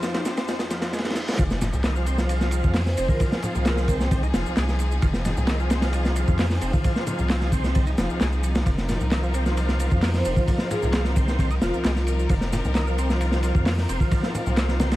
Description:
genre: breakbeat, breaks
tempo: 132 BPM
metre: 4/4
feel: straight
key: F minor pentatonic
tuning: A4 = 440 Hz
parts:
  - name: clear studio string section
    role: sustained chords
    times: 0.0-15.0 s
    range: F2 to C5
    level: -32 LUFS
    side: left 1 dB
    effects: vintage 12-bit sampler grit, sidechain pumping
  - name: bright tonewheel organ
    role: riff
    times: 0.0-15.0 s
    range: Eb3 to Eb4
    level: -30 LUFS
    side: equal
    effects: overdrive, chorus vibrato, slow rotary speaker, low-pass filter, dub echo
  - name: orchestra-hit-like synth stab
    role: stabs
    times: 0.0-1.2 s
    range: Eb4 to Ab4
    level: -36 LUFS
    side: left 1 dB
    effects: none
  - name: crunchy breakbeat drum kit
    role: drums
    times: 0.0-15.0 s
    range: hi-hat, kick drum, ride cymbal, snare drum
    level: -24 LUFS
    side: equal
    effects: high-pass filter on kick, high-pass filter on cymbals, high-pass filter on hats, high-pass filter on snare, high-pass filter on room
  - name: electronic shaker and handclaps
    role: drums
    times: 0.0-15.0 s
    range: none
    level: -38 LUFS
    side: right 1 dB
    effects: none
  - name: reverse cymbal and impact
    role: sound effects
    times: 0.8-3.2 s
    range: none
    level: -36 LUFS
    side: right 1 dB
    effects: none
  - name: saturated sub bass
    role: bass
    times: 1.4-15.0 s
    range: F1 to F2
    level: -24 LUFS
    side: equal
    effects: none
  - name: congas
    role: percussion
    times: 1.6-14.9 s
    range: none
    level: -31 LUFS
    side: left 1 dB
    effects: none
  - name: vibraphone with medium mallets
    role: melody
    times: 2.9-3.8, 10.1-12.3 s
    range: F4 to C5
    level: -30 LUFS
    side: right 1 dB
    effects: AM radio sound, dub echo
room: little or no reverb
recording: vinyl crackle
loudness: -20 LUFS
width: side -16 dB against mid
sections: 0.0-1.4 A section; 1.4-15.0 B section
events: reverse cymbal 0.8-1.4; drop 1.4-15.0; impact 1.4-3.2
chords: 0.0 Fm7

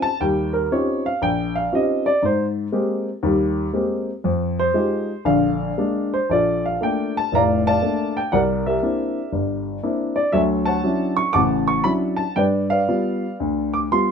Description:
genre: solo jazz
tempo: 119 BPM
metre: 4/4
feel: swing 67% on 8ths, rubato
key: Eb major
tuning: A4 = 439 Hz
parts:
  - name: dark baby grand piano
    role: solo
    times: 0.0-14.1 s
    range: F1 to D6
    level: -18 LUFS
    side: equal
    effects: none
room: light reverb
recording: minimal, uncompressed stereo recording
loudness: -18 LUFS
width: side -6 dB against mid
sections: 0.0-6.3 A section; 6.3-14.1 B section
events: grand piano solo 0.0-6.3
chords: 0.2 Eb13; 2.2 Abmaj9; 4.2 Fm9; 5.3 Bb7; 6.3 Bbmaj7; 8.3 C9; 10.3 Dmaj9; 12.4 G7

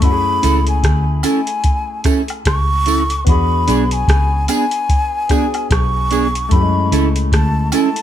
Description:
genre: lovers rock reggae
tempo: 74 BPM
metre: 4/4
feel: swing 59% on 16ths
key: F# minor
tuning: A4 = 440 Hz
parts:
  - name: breathy concert flute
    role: melody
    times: 0.0-8.0 s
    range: G#5 to C#6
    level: -20 LUFS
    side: left 1 dB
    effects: tape echo
  - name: warm concert grand piano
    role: accompaniment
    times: 0.0-8.0 s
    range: G#3 to G#4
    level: -24 LUFS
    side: left 5 dB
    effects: none
  - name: vintage muted fingered electric bass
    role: bass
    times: 0.0-7.7 s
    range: B1 to F#2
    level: -17 LUFS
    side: equal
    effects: none
  - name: soft vintage rhythm box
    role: drums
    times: 0.0-8.0 s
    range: hi-hat, kick drum, rim click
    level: -16 LUFS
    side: equal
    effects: none
  - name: mellow electric guitar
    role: stabs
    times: 0.4-7.9 s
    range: B3 to A4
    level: -17 LUFS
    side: right 5 dB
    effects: wide subtle chorus
  - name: tambourine and woodblock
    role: percussion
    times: 0.4-7.9 s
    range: none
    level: -28 LUFS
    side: right 2 dB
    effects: none
room: light reverb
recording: none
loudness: -13 LUFS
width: side -10 dB against mid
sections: 0.0-8.0 A section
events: none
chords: 0.0 F#m7; 3.3 E7 (rootless); 6.5 F#m7

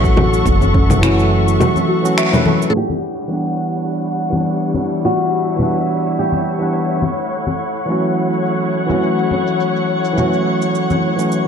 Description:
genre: sunset chillout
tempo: 105 BPM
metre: 4/4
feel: swing 55% on 16ths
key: E dorian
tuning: A4 = 439 Hz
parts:
  - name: barky tine electric piano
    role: accompaniment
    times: 0.0-11.5 s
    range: E3 to F#5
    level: -18 LUFS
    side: moving between left 3 dB and right 3 dB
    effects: auto-pan, digital delay
  - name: muted chamber string section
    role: sustained chords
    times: 0.0-11.5 s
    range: G3 to C#6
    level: -22 LUFS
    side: left 2 dB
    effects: none
  - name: soft round pluck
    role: arpeggios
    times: 0.0-2.7 s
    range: C#4 to E5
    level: -22 LUFS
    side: equal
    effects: lush chorus, digital delay
  - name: woody fretless electric bass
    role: bass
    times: 0.0-1.6 s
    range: F#1 to A1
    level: -16 LUFS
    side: equal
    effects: lush chorus
  - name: deep house drum kit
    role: drums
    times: 0.0-11.4 s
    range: congas, crash cymbal, finger snaps, shaker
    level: -20 LUFS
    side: equal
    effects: none
  - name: electronic kick drum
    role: drums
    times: 0.0-0.9 s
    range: none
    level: -16 LUFS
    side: equal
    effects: none
  - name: congas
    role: percussion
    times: 0.2-11.0 s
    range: none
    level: -23 LUFS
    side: left 2 dB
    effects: none
  - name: flamenco guitar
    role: melody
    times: 2.7-7.0 s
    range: F#4 to A4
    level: -21 LUFS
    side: equal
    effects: tape echo
  - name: twinkling granular texture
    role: texture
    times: 3.2-11.5 s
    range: C#5 to C#6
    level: -27 LUFS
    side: left 2 dB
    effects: built-in reverb
room: wet scoring stage reverb, RT60 2.0 s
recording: dark, warm production, low-pass filter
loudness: -14 LUFS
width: side -7 dB against mid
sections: 0.0-2.7 A section; 2.7-11.5 B section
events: band accent 2.2; filter sweep 2.7-11.5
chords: 0.0 F#m7; 2.7 Em9; 7.0 F#m7

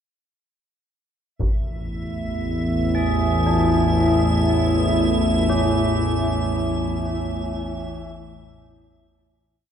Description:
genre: dark ambient drone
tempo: 58 BPM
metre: 4/4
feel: straight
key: A major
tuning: A4 = 442 Hz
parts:
  - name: dark analog pad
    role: sustained chords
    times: 1.4-9.6 s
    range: A3 to E5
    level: -24 LUFS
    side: equal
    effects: chorus
  - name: analog drone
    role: drone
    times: 1.7-9.7 s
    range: A1 to E2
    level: -22 LUFS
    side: equal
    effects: chorus
  - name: taiko ensemble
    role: percussion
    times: 1.4-1.6 s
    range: none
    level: -27 LUFS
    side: equal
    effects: low-pass filter on perc
  - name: icy glass pad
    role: texture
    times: 1.8-9.6 s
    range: E5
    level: -30 LUFS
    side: right 3 dB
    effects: chorus, built-in reverb
  - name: tubular bells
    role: arpeggios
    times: 2.9-9.7 s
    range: C#4 to G#4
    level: -27 LUFS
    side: equal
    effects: diffuse ambient delay
room: wet cathedral reverb, RT60 5.3 s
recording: none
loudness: -19 LUFS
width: side -8 dB against mid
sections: 1.4-9.6 A section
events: fade-out 5.5-9.6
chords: 1.4 A5

